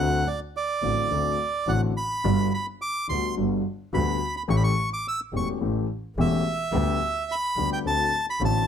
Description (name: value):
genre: tango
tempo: 106 BPM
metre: 4/4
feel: rubato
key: G major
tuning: A4 = 439 Hz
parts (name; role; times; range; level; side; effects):
- bandoneon; melody; 0.0-8.7 s; D5 to E6; -26 LUFS; right 2 dB; plate reverb
- warm grand piano; accompaniment; 0.0-8.7 s; E1 to G4; -27 LUFS; left 3 dB; none
- clear double bass; bass; 0.0-8.6 s; E1 to D2; -28 LUFS; right 1 dB; none
room: light reverb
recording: none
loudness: -23 LUFS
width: side -8 dB against mid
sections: 0.0-8.7 A section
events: none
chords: 0.0 D7; 2.2 Gmaj7; 4.5 A7; 6.7 G/D; 7.9 D7